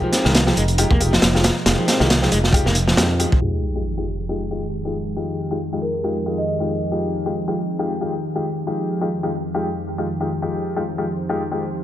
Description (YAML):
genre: breakbeat, breaks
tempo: 137 BPM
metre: 4/4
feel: swing 56% on 16ths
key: F minor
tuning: A4 = 442 Hz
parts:
  - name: lush unison pad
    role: sustained chords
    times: 0.0-11.8 s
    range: F2 to C5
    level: -26 LUFS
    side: equal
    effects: chorus, vintage 12-bit sampler grit, sidechain pumping
  - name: electric guitar at the edge of break-up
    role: riff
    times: 0.0-3.3 s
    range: Eb3 to C4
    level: -24 LUFS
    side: equal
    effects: overdrive, digital delay
  - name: dark grand piano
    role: stabs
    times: 0.0-11.6 s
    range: Ab3 to G4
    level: -25 LUFS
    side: left 2 dB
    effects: low-pass filter, digital delay
  - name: crunchy breakbeat drum kit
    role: drums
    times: 0.1-3.4 s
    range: hi-hat, kick drum, snare drum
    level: -18 LUFS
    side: equal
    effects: none
  - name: fingered electric bass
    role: bass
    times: 0.3-3.2 s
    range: F1 to F2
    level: -20 LUFS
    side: equal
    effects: none
  - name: sub drop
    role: sound effects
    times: 3.4-5.2 s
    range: none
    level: -27 LUFS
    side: equal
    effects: none
  - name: marimba with medium mallets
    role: melody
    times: 5.8-6.6 s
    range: Bb4 to Eb5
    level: -27 LUFS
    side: equal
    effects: small speaker sound, vintage 12-bit sampler grit, digital delay
room: light reverb, small room ambience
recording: low-pass filter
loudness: -18 LUFS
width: side -12 dB against mid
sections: 0.0-3.4 A section; 3.4-11.8 B section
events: impact 3.4-5.2; filter sweep on grand piano 3.4-11.8; filter sweep 3.4-11.8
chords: 0.0 Fm9